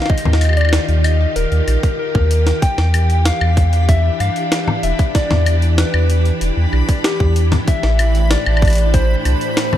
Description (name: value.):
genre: IDM.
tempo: 95 BPM.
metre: 4/4.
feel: straight.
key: unclear.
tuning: A4 = 442 Hz.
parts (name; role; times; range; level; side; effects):
soft struck synth lead; melody; 0.0-9.8 s; G4 to G5; -22 LUFS; left 3 dB; chorus, ping-pong delay.
soft string machine; sustained chords; 0.0-9.8 s; A2 to C5; -23 LUFS; equal; ensemble chorus.
jungle sampler-style drum kit; drums; 0.0-9.8 s; congas, hi-hat, snare drum, woodblock; -21 LUFS; left 2 dB; studio reverb.
electronic kick drum; drums; 0.1-9.1 s; none; -16 LUFS; equal; studio reverb.
warm sub bass; bass; 0.3-9.4 s; Eb1 to G2; -14 LUFS; equal; tube saturation.
backwards swelling texture; texture; 2.6-9.8 s; D4 to B5; -29 LUFS; left 1 dB; built-in reverb.
room: little or no reverb.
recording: none.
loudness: -13 LUFS.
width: side -12 dB against mid.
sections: 0.0-9.8 A section.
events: none.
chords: 0.0 Eb; 2.6 Em7; 7.7 Am11.